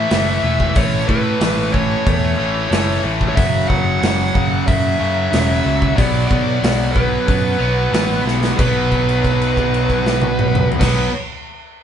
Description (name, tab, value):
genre	hard rock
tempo	92 BPM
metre	4/4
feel	straight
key	unclear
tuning	A4 = 440 Hz
part	high-gain lead guitar	melody	0.0-11.1 s	B4 to F#5	-21 LUFS	equal	distortion
part	cranked stack guitar	riff	0.0-11.1 s	F#2 to B3	-23 LUFS	right 2 dB	overdrive
part	heavy high-gain guitar	riff	0.0-11.1 s	F#2 to B3	-22 LUFS	left 2 dB	distortion
part	picked electric bass	bass	0.0-11.1 s	E1 to B2	-20 LUFS	equal	none
part	big rock drum kit	drums	0.1-11.0 s	crash cymbal, hi-hat, kick drum, snare drum, toms	-19 LUFS	right 1 dB	none
room	light reverb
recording	band playing live in one room, nothing above 11.0 kHz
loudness	-14 LUFS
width	side -9 dB against mid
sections	0.0-8.6 A section; 8.6-11.2 B section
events	drum fill 8.3-8.6; held note 8.6-10.8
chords	0.0 A; 3.4 F#5; 6.0 Bm; 8.6 B5